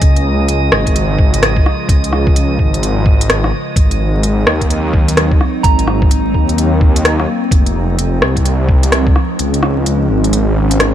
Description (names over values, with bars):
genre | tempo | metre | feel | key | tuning
future garage | 128 BPM | 4/4 | swing 62% on 16ths | unclear | A4 = 440 Hz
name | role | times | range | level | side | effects
warbly tape-like pad | sustained chords | 0.0-10.9 s | Db3 to F4 | -20 LUFS | equal | chorus, built-in reverb, phaser, vintage 12-bit sampler grit, sidechain pumping
swelling detuned saw bass | bass | 0.0-10.9 s | F1 to Eb2 | -15 LUFS | equal | sidechain pumping
electronic kick drum | drums | 0.0-9.1 s | none | -12 LUFS | equal | none
organic electronic drum kit | drums | 0.0-10.9 s | hi-hat, rim click | -18 LUFS | equal | none
drifting glass-harmonics texture | texture | 0.0-10.9 s | Eb5 | -26 LUFS | right 2 dB | chorus, built-in reverb
soft synth bell | melody | 5.6-5.9 s | Bb5 | -25 LUFS | right 6 dB | chorus, dub echo
room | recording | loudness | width
little or no reverb | vinyl crackle | -11 LUFS | side -11 dB against mid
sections
0.0-10.9 A section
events
kick drops out 9.4-10.9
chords
0.0 Db; 3.8 Ab7; 7.5 Fm7; 9.4 Dbmaj7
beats
| 0.02 0.49 0.96 1.43 | 1.89 2.36 2.83 3.30 | 3.77 4.24 4.71 5.17 | 5.64 6.11 6.58 7.05 | 7.52 7.99 8.46 8.93 | 9.39 9.86 10.33 10.80